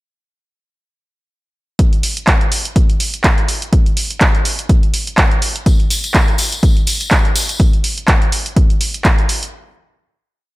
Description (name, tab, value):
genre	house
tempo	124 BPM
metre	4/4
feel	swing 56% on 16ths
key	none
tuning	none
part	electronic kick drum	drums	1.8-9.2 s	none	-13 LUFS	equal	none
part	punchy analog drum machine	drums	1.8-9.5 s	handclaps, hi-hat	-17 LUFS	right 1 dB	none
part	tambourine	percussion	5.7-7.6 s	none	-21 LUFS	left 3 dB	none
room	little or no reverb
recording	none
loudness	-12 LUFS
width	side -19 dB against mid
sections	1.8-9.5 groove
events	none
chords	none